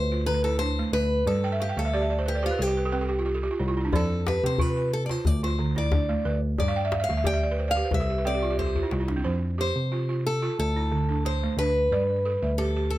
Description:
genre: west african traditional, West African string and xylophone music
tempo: 90 BPM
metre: 4/4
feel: straight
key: F lydian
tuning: A4 = 441 Hz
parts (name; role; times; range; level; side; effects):
- picked old ladder-braced acoustic guitar; melody; 0.0-13.0 s; F4 to G5; -28 LUFS; equal; none
- bell-like tine electric piano; bass; 0.0-13.0 s; C2 to C3; -27 LUFS; equal; none
- balafon; arpeggios; 0.1-13.0 s; D3 to G5; -29 LUFS; right 3 dB; none
- djembe; percussion; 3.9-9.2 s; none; -28 LUFS; left 2 dB; none
room: little or no reverb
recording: close, detailed microphones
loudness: -23 LUFS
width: side -15 dB against mid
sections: 0.0-9.3 A section; 9.3-13.0 B section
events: steel-string acoustic guitar solo 0.0-9.3; balafon fill 1.4-3.9, 6.7-9.3; drum fill 8.6-9.3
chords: 0.0 Dm; 1.3 G; 2.6 C5; 3.9 F5; 5.3 Dm; 6.6 G; 7.9 C5; 9.3 F; 10.6 D5; 11.9 G

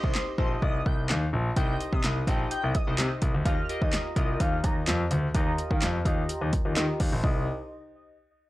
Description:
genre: dance-pop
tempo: 127 BPM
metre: 4/4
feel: straight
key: C minor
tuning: A4 = 439 Hz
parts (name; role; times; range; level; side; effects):
- airy dreamy lead; melody; 0.0-7.5 s; C5 to Bb5; -35 LUFS; left 1 dB; chorus, sidechain pumping, low-pass filter
- chorused retro synth keys; accompaniment; 0.0-7.5 s; Eb4 to Eb5; -36 LUFS; equal; sidechain pumping, low-pass filter
- clear concert grand piano; bass; 0.0-7.5 s; Bb1 to Eb3; -28 LUFS; left 1 dB; sidechain pumping
- deep house drum kit; drums; 0.0-7.4 s; handclaps, hi-hat, kick drum, snare drum; -27 LUFS; equal; overdrive
room: digital ambience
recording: dry, gritty hardware recording, transformer saturation, cassette tape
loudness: -24 LUFS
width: side -17 dB against mid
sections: 0.0-7.2 A section; 7.2-8.5 B section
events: filter sweep 0.0-7.2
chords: 0.0 Cm; 3.5 Ebadd9; 7.2 Cm

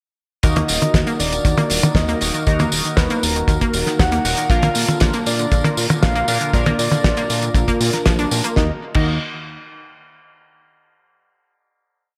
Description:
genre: italo disco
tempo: 118 BPM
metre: 4/4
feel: straight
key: Eb harmonic minor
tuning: A4 = 439 Hz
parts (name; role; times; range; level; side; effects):
- soft octave-layered synth lead; melody; 0.4-9.2 s; Bb4 to Gb5; -27 LUFS; equal; chorus, digital delay
- analog pluck; arpeggios; 0.4-9.2 s; D3 to Bb4; -28 LUFS; equal; chorus, digital delay
- chorused polysynth; stabs; 0.4-9.1 s; Bb2 to Bb4; -27 LUFS; equal; phaser, digital delay
- fat analog bass; bass; 0.4-9.2 s; Eb1 to Bb2; -26 LUFS; equal; none
- damped 70s drum kit; drums; 0.4-9.0 s; crash cymbal, hi-hat, snare drum, tambourine, toms; -23 LUFS; equal; gated reverb
- kick drum; drums; 0.4-9.1 s; none; -20 LUFS; equal; none
room: light reverb, small room ambience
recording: bright 1980s-style digital production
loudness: -18 LUFS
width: mono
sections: 0.4-8.6 chorus; 8.6-10.6 final chord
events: none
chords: 0.4 Ebm; 4.5 Bb; 8.6 Ebm

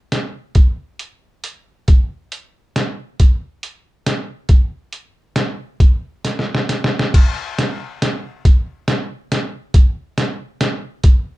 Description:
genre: alpine folk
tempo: 138 BPM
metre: 3/4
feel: rubato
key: none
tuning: none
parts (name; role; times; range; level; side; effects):
- trip hop sampler-style drum kit; drums; 0.1-11.1 s; crash cymbal, hi-hat, kick drum, snare drum; -14 LUFS; equal; none
room: light reverb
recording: dark, warm production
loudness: -16 LUFS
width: side -18 dB against mid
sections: 0.0-7.1 A section; 7.1-11.4 B section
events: kick and snare drop out 1.4-1.9; drum fill 6.2-7.1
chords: none

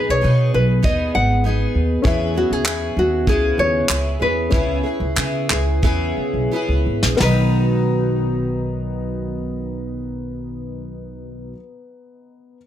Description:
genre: acoustic pop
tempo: 84-99 BPM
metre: 4/4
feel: straight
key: B major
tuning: A4 = 441 Hz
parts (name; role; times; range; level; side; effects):
- nylon-string guitar; melody; 0.0-11.5 s; F#4 to F#5; -21 LUFS; left 1 dB; plate reverb
- dark upright piano; accompaniment; 0.0-12.6 s; B3 to A#5; -29 LUFS; left 5 dB; plate reverb
- picked steel-string acoustic guitar; accompaniment; 0.0-11.6 s; B2 to B4; -23 LUFS; equal; double-tracked left and right, plate reverb
- upright bass; bass; 0.1-11.5 s; G#1 to C#3; -21 LUFS; equal; none
- soft brush drum kit; drums; 0.8-7.4 s; handclaps, hi-hat, kick drum, snare drum; -20 LUFS; equal; none
room: light reverb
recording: none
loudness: -17 LUFS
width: side -11 dB against mid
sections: 0.0-7.2 A section; 7.2-10.1 B section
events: slowing down 2.1-7.2; drum fill 5.8-7.2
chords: 0.0 G#m/B; 2.1 E6; 4.5 C#m7; 7.2 Bmaj7

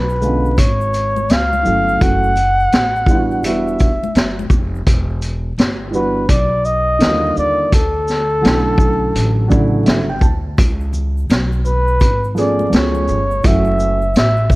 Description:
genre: hip hop, jazz-hop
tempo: 84 BPM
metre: 4/4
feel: swing 63% on 16ths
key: E dorian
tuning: A4 = 439 Hz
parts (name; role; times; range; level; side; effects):
- breathy flugelhorn; melody; 0.0-14.6 s; A4 to F#5; -17 LUFS; equal; none
- upright bass; bass; 0.0-14.6 s; E1 to D#2; -19 LUFS; equal; none
- egg shaker and congas; percussion; 0.1-4.9, 10.6-14.6 s; none; -30 LUFS; left 6 dB; none
- dark concert grand piano; accompaniment; 0.2-14.0 s; C#3 to A5; -19 LUFS; right 2 dB; none
- vintage drum kit; drums; 0.2-14.6 s; hi-hat, kick drum, shaker, snare drum; -15 LUFS; equal; none
room: little or no reverb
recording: vinyl crackle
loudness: -13 LUFS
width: side -20 dB against mid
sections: 0.0-4.9 A section; 4.9-14.6 A section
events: grand piano fill 9.2-10.6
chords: 0.0 C#7b9; 1.3 C#; 2.0 F#m7; 3.4 Em9; 7.0 D#maj9; 7.7 Dmaj9; 10.6 C#7; 12.7 C#7b13; 13.4 F#m7

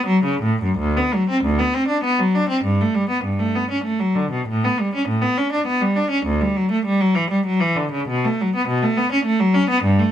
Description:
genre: classical, baroque-style suite movement for unaccompanied cello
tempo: 99 BPM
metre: 3/4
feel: uneven beats, rubato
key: D major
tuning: A4 = 445 Hz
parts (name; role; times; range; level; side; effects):
- clear cello; solo; 0.0-10.1 s; D2 to D4; -17 LUFS; equal; none
room: light reverb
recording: minimal, uncompressed stereo recording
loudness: -17 LUFS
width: side -10 dB against mid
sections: 0.8-10.1 A section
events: none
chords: none

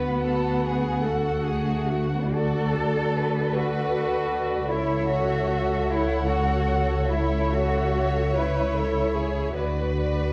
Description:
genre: classical, slow romantic movement for string orchestra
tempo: 49 BPM (dotted quarters)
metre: 12/8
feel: rubato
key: A major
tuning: A4 = 442 Hz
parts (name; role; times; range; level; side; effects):
- warm chamber violin section; melody; 0.0-10.3 s; D5 to F#5; -37 LUFS; equal; none
- rich chamber violin section; second line; 0.0-10.3 s; F#4 to C#5; -33 LUFS; equal; none
- rich chamber viola section; accompaniment; 0.0-10.3 s; F#4 to B4; -33 LUFS; equal; none
- rich studio double bass section; bass; 0.0-10.3 s; C#2 to D2; -29 LUFS; equal; none
- warm chamber cello section; bass; 0.0-9.6 s; A3 to A4; -30 LUFS; equal; none
room: moderate recital hall reverb, RT60 1.5 s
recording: dark, warm production, vinyl crackle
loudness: -25 LUFS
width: mono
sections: 0.0-10.3 A section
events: none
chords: 0.0 D; 4.7 A/C#; 9.6 Bm/D

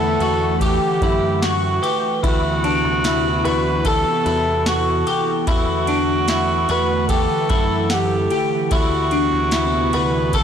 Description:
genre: dream pop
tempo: 74 BPM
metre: 4/4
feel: straight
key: E minor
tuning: A4 = 440 Hz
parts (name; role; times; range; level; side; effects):
- dark viola; melody; 0.0-10.4 s; F#4 to B4; -21 LUFS; right 1 dB; digital delay, shimmer reverb
- hollow soft pad; sustained chords; 0.0-10.4 s; C3 to F#5; -25 LUFS; right 1 dB; chorus, shimmer reverb
- semi-hollow electric guitar; arpeggios; 0.0-10.4 s; D4 to F#5; -22 LUFS; left 3 dB; ensemble chorus, digital delay, shimmer reverb
- deep dub picked electric bass; bass; 0.0-10.4 s; D2 to F#2; -24 LUFS; equal; tube saturation
- booming analog drum machine; drums; 0.2-10.4 s; kick drum, ride cymbal, snare drum, tambourine; -25 LUFS; equal; none
- vibraphone with medium hard mallets; texture; 1.8-9.1 s; E4 to B4; -30 LUFS; right 3 dB; digital delay, shimmer reverb
room: light reverb, digital ambience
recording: blown-out, overdriven recording, overdrive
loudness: -16 LUFS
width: side -8 dB against mid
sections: 0.0-10.4 A section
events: none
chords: 0.0 Em11; 2.2 D13; 5.5 Em11; 8.7 D13

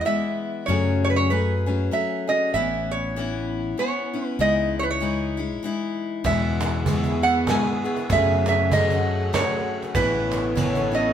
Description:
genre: acoustic folk duo or small band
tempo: 97 BPM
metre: 3/4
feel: swing 58% on 8ths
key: unclear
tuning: A4 = 440 Hz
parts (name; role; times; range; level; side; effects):
- lap resonator guitar; second line; 0.0-11.1 s; B4 to G#5; -24 LUFS; right 3 dB; none
- picked steel-string acoustic guitar; accompaniment; 0.0-11.1 s; E2 to G#4; -26 LUFS; left 4 dB; none
- fingered electric bass; bass; 0.7-11.1 s; A1 to F#2; -26 LUFS; equal; none
- warm analog pad; sustained chords; 6.6-11.1 s; A3 to F#5; -28 LUFS; equal; chorus
- soft brush drum kit; drums; 6.2-10.7 s; kick drum, ride cymbal, snare drum; -32 LUFS; equal; none
- cajon; percussion; 6.2-11.1 s; none; -28 LUFS; right 3 dB; none
room: wet stone room reverb, RT60 1.0 s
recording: band playing live in one room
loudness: -20 LUFS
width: side -9 dB against mid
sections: 0.0-11.1 A section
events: resonator guitar played with a steel bar solo 0.0-11.1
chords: 0.0 E; 0.7 F#madd9; 2.5 Aadd9; 4.4 C#madd9; 6.2 E; 8.1 F#madd9; 9.9 Aadd9

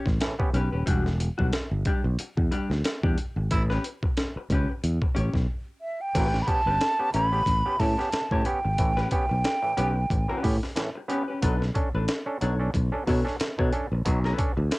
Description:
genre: funk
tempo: 91 BPM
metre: 4/4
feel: swing 56% on 16ths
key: unclear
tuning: A4 = 441 Hz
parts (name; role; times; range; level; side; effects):
- vintage hollow-body jazz guitar; accompaniment; 0.0-14.8 s; G3 to C#5; -33 LUFS; left 2 dB; cassette tape
- fingered electric bass; bass; 0.1-14.7 s; D#1 to B2; -26 LUFS; equal; transformer saturation
- breakbeat sampler-style drum kit; drums; 0.1-14.8 s; crash cymbal, hi-hat, kick drum, snare drum; -27 LUFS; equal; cassette tape
- overdriven clav; stabs; 0.2-0.6, 6.1-14.8 s; A2 to A4; -32 LUFS; right 2 dB; cassette tape
- growling baritone saxophone; second line; 3.5-3.6 s; E4; -31 LUFS; right 2 dB; cassette tape
- breathy mellow silver concert flute; melody; 5.8-10.4 s; E5 to B5; -26 LUFS; right 1 dB; none
room: light reverb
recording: home recording on cassette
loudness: -23 LUFS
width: side -22 dB against mid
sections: 0.0-6.1 A section; 6.1-14.8 B section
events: band accent 3.5-6.1; break 5.5-6.1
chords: 0.0 A9; 0.9 Em9; 3.5 A9; 11.4 Bm7

